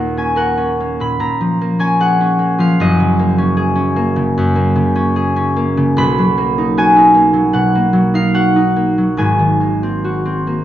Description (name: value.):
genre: classical, solo harp piece.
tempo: 69-79 BPM.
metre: 4/4.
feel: rubato.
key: unclear.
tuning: A4 = 440 Hz.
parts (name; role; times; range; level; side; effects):
concert harp; solo; 0.0-10.6 s; Eb1 to Cb6; -12 LUFS; equal; none.
room: wet recital hall reverb, RT60 1.4 s.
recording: dark, warm production, nothing above 7.7 kHz.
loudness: -12 LUFS.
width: side -12 dB against mid.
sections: 0.0-10.6 A section.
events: none.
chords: 0.0 Ebm7; 1.2 Bbm7; 2.8 Gbadd9; 6.0 Bmaj7; 9.2 G#9.